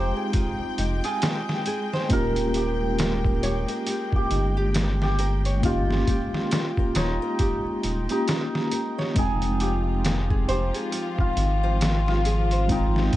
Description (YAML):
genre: trip hop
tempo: 68 BPM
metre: 4/4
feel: swing 59% on 16ths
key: F minor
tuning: A4 = 440 Hz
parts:
  - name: hammered dulcimer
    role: melody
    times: 0.0-13.2 s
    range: Eb4 to Bb4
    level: -29 LUFS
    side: equal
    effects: vintage 12-bit sampler grit, tape echo
  - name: mellow tine electric piano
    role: accompaniment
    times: 0.0-13.2 s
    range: Ab3 to G5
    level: -30 LUFS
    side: equal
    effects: medium stereo tremolo, tape echo
  - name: dark studio string section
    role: sustained chords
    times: 0.0-13.2 s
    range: F3 to G5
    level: -33 LUFS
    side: left 2 dB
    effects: none
  - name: nylon-string guitar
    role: arpeggios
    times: 0.0-13.2 s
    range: Eb4 to Db5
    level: -34 LUFS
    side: right 1 dB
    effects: tape echo
  - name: round analog bass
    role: bass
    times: 0.0-13.1 s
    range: Eb1 to Ab1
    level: -25 LUFS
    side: equal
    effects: tube saturation
  - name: trip hop sampler-style drum kit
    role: drums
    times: 0.3-13.2 s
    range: hi-hat, kick drum, snare drum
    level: -26 LUFS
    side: equal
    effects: none
room: studio ambience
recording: vinyl crackle, nothing above 10.7 kHz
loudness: -22 LUFS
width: side -15 dB against mid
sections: 0.0-13.2 A section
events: none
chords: 0.0 Fm7; 2.1 Eb7; 9.2 Fm7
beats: 0.34 1.22 | 2.11 2.99 3.87 4.75 | 5.64 6.52 7.40 8.28 | 9.16 10.05 10.93 11.81 | 12.70